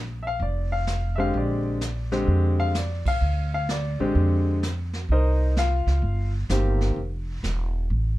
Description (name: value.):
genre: jazz piano trio.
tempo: 128 BPM.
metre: 4/4.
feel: swing 65% on 8ths.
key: Bb mixolydian.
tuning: A4 = 437 Hz.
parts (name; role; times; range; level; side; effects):
upright bass; bass; 0.0-8.2 s; E1 to F2; -24 LUFS; equal; none.
clear grand piano; melody; 0.2-7.0 s; D3 to F5; -26 LUFS; left 2 dB; none.
jazz brush drum kit; drums; 0.4-8.2 s; brushed snare drum, hi-hat, kick drum, ride cymbal, snare drum; -32 LUFS; right 2 dB; none.
room: light reverb.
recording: dark, warm production.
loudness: -22 LUFS.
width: side -17 dB against mid.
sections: 0.0-8.2 A section.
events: band accent 3.0.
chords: 0.0 Bb13; 5.1 Cm7; 7.0 F.